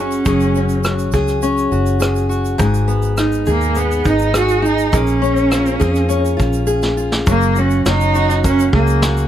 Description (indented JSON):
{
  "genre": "acoustic pop",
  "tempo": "103 BPM",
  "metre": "4/4",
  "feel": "straight",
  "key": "F# major",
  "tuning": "A4 = 438 Hz",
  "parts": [
    { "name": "rich cello", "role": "melody", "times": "0.0-9.3 s", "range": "A#3 to F#4", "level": "-18 LUFS", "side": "right 3 dB", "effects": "none" },
    { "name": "fingerpicked steel-string acoustic guitar", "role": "accompaniment", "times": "0.0-9.3 s", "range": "G#2 to G#4", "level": "-18 LUFS", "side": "left 2 dB", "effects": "none" },
    { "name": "vintage muted fingered electric bass", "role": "bass", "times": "0.0-9.3 s", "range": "F#1 to E#2", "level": "-18 LUFS", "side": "equal", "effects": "none" },
    { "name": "vintage brush drum kit", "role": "drums", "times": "0.1-9.3 s", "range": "kick drum, rim click, shaker, snare drum", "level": "-20 LUFS", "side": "equal", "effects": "none" },
    { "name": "egg shaker", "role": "percussion", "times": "0.1-9.3 s", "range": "none", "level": "-35 LUFS", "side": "right 8 dB", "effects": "none" }
  ],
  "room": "little or no reverb",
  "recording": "none",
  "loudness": "-13 LUFS",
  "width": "side -11 dB against mid",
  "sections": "0.0-7.3 A section; 7.3-9.3 B section",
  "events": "drum fill 6.7-7.3",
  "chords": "0.0 F#sus2; 2.6 G#m; 4.9 A#m7; 7.3 F#add9"
}